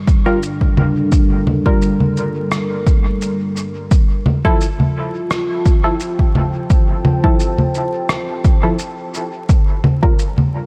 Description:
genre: ambient dub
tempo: 86 BPM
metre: 4/4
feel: swing 54% on 16ths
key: G minor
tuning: A4 = 440 Hz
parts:
  - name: deep dark ambient pad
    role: sustained chords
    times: 0.0-10.7 s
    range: G3 to A5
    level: -24 LUFS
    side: equal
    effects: chorus, built-in reverb
  - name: electronic kick drum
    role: drums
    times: 0.1-10.2 s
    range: none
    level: -16 LUFS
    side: equal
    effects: overdrive
  - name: electronic shaker, congas and rim click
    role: drums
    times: 0.1-10.5 s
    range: none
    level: -20 LUFS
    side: equal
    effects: dub echo
  - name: filtered dub chord stab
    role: stabs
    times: 0.3-10.2 s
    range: F3 to Bb4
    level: -25 LUFS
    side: equal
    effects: lush chorus, dub echo
room: light reverb, digital ambience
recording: vinyl crackle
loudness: -16 LUFS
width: mono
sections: 0.0-10.7 A section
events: none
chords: 0.0 Gm7; 3.9 Fmaj7; 9.5 Gm7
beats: 0.42 | 1.12 1.82 2.52 3.21 | 3.91 4.61 5.31 6.00 | 6.70 7.40 8.10 8.79 | 9.49 10.19

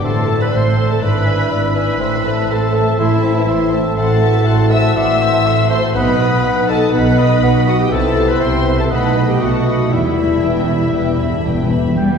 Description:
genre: classical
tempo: 122 BPM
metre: 4/4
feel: straight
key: E minor from 4.0 s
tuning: A4 = 440 Hz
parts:
  - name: rich symphonic violin section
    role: melody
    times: 0.0-12.2 s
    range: B4 to E6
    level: -25 LUFS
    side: left 3 dB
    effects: none
  - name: mellow oboe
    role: second line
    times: 0.0-12.2 s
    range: C5 to G5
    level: -26 LUFS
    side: equal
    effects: none
  - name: warm clarinet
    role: second line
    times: 0.0-11.7 s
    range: E4 to E5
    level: -20 LUFS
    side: left 1 dB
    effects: none
  - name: warm symphonic violin section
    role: second line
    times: 0.0-12.2 s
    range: G4 to D#6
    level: -26 LUFS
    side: left 3 dB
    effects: none
  - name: rich studio viola section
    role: accompaniment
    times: 0.0-12.2 s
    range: B3 to E5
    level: -25 LUFS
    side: equal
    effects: none
  - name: warm bassoon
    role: accompaniment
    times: 0.0-11.7 s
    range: G3 to D#4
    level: -24 LUFS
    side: right 2 dB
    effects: none
  - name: dark French horn section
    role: sustained chords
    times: 0.0-11.7 s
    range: G3 to E4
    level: -21 LUFS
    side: left 2 dB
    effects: none
  - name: concert harp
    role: arpeggios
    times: 0.0-12.2 s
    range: G#2 to D5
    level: -22 LUFS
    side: left 3 dB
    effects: none
  - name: rich studio double bass section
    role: bass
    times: 0.0-12.2 s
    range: E1 to E2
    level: -22 LUFS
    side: right 3 dB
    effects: none
  - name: warm symphonic cello section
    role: bass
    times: 0.0-12.2 s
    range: E2 to G3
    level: -20 LUFS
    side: right 2 dB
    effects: none
  - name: timpani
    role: percussion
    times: 8.9-11.9 s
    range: E2 to B2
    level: -21 LUFS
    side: left 2 dB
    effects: none
room: wet concert hall reverb, RT60 2.0 s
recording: heard from further back in the room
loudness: -12 LUFS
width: side -6 dB against mid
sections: 0.0-12.0 A section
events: timpani fill 9.9-12.0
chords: 0.0 Am; 1.0 E7/G#; 2.0 Am; 4.0 F#m7b5/A; 6.0 B; 7.9 Cmaj7; 8.9 B7; 9.9 Em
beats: | 0.04 0.53 1.03 1.52 | 2.01 2.50 3.00 3.48 | 3.98 4.47 4.96 5.46 | 5.95 6.45 6.94 7.43 | 7.92 8.42 8.91 9.41 | 9.92 10.43 10.95 11.46 | 11.96

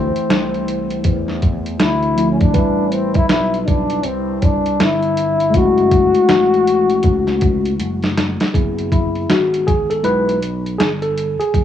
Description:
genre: hip hop, jazz-hop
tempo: 80 BPM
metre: 4/4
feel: swing 63% on 16ths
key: F# minor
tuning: A4 = 440 Hz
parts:
  - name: breathy trombone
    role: melody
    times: 0.0-7.8 s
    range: C4 to F#4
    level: -17 LUFS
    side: left 3 dB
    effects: cassette tape, tape echo
  - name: tine electric piano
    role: accompaniment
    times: 0.0-11.6 s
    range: E3 to B4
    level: -19 LUFS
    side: left 1 dB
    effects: medium stereo tremolo
  - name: sustaining fretless electric bass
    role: bass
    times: 0.0-11.6 s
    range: F#1 to E2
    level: -23 LUFS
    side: equal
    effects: none
  - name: boom bap sampler-style drum kit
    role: drums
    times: 0.2-11.6 s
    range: hi-hat, kick drum, snare drum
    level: -18 LUFS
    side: equal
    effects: vintage 12-bit sampler grit, cassette tape
room: light reverb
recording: home recording on cassette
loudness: -14 LUFS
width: side -10 dB against mid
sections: 0.0-8.5 A section; 8.5-11.6 B section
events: drum fill 7.8-8.5; tine electric piano solo 8.5-11.6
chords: 0.0 Dm9; 2.5 Am9; 5.5 F#m9; 8.5 F#9sus4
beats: 0.30 1.05 1.80 | 2.55 3.30 4.05 4.80 | 5.55 6.30 7.05 7.80 | 8.55 9.30 10.05 10.80 | 11.55

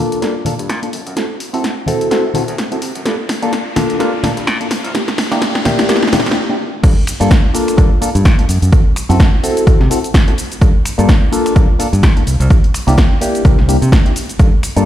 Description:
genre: filtered disco house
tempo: 127 BPM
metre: 4/4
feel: swing 57% on 16ths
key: G dorian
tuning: A4 = 439 Hz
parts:
  - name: bright reed electric piano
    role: accompaniment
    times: 0.0-14.9 s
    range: Bb3 to A4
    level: -18 LUFS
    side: left 1 dB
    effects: phaser, sidechain pumping, low-pass filter
  - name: riser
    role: sound effects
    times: 0.0-6.4 s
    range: none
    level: -30 LUFS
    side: left 2 dB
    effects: none
  - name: punchy analog drum machine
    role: drums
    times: 0.1-14.8 s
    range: cabasa, crash cymbal, finger snaps, hi-hat, snare drum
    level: -20 LUFS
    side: equal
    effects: overdrive, sidechain pumping on hats, sidechain pumping on perc, sidechain pumping on cymbals
  - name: tube shaker and congas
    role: percussion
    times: 0.1-6.3 s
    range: none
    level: -23 LUFS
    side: left 2 dB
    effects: sidechain pumping on perc, low-pass filter on perc
  - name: modern bright fingered electric bass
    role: bass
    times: 0.2-14.8 s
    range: F#1 to C3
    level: -16 LUFS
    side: equal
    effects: sidechain pumping, high-pass filter, low-pass filter
  - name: electronic kick drum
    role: drums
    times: 6.8-14.5 s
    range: none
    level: -10 LUFS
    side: equal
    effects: overdrive
room: light reverb, digital ambience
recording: played on a big sound system in a bare room, stone room reverb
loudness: -11 LUFS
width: side -12 dB against mid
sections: 0.0-6.8 A section; 6.8-14.9 B section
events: build-up 0.0-6.8; drum fill 0.0-6.4; riser 0.0-6.4; filter sweep 0.0-6.8; break 6.4-6.8; drop 6.8-14.9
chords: 0.0 Gm9; 0.9 D7/F# (rootless); 3.1 Gm9; 4.7 C7; 6.8 Gm9; 8.5 F#m7b5; 10.6 Gm9; 12.3 C7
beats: 0.22 0.69 | 1.17 1.64 2.11 2.58 | 3.06 3.53 4.00 4.47 | 4.95 5.42 5.89 6.36 | 6.84 7.31 7.78 8.25 | 8.72 9.20 9.67 10.14 | 10.62 11.09 11.56 12.03 | 12.51 12.98 13.45 13.92 | 14.39

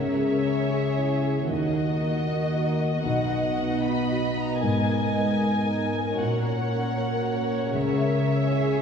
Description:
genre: cinematic, emotional film score for orchestra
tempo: 77 BPM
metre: 4/4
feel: rubato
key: G# minor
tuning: A4 = 440 Hz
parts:
  - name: dark studio violin section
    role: melody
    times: 0.0-8.8 s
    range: D#5 to B5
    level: -32 LUFS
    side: left 2 dB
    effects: none
  - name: dark studio violin section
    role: second line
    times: 0.0-8.8 s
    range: F#4 to D#5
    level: -31 LUFS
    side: left 2 dB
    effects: none
  - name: dark baby grand piano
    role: accompaniment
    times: 0.0-8.8 s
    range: B1 to E5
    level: -28 LUFS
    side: left 1 dB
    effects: none
  - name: dark studio viola section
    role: accompaniment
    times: 0.0-8.8 s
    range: A#3 to G#4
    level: -30 LUFS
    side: right 2 dB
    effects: none
  - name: concert harp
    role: arpeggios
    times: 0.0-8.8 s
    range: G#2 to D#5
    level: -32 LUFS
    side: left 4 dB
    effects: none
  - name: warm studio cello section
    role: bass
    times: 0.0-8.8 s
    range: G#2 to D#3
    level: -29 LUFS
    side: right 1 dB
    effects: none
room: wet scoring stage reverb, RT60 1.6 s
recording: heard from further back in the room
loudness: -22 LUFS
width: side -6 dB against mid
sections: 0.0-8.8 A section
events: none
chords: 0.0 C#m; 1.5 D#m; 3.1 B; 4.6 G#madd9; 6.2 F#/A#; 7.8 C#m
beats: 0.70 | 1.49 2.28 3.06 3.85 | 4.63 5.42 6.20 6.98 | 7.75 8.53

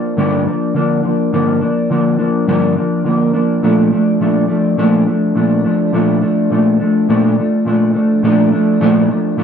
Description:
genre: indie pop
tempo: 104 BPM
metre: 4/4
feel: straight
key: Bb major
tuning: A4 = 440 Hz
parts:
  - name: mellow electric guitar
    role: solo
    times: 0.0-9.4 s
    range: G2 to D4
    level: -12 LUFS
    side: equal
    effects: lush chorus, vibrato effect
room: light reverb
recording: none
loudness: -12 LUFS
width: side -7 dB against mid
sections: 0.0-8.2 A section; 8.2-9.4 B section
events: none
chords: 0.0 Gm7; 3.6 Bbmaj7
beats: 0.17 0.75 | 1.33 1.90 2.48 3.06 | 3.63 4.21 4.78 5.36 | 5.93 6.51 7.09 7.66 | 8.24 8.81 9.38

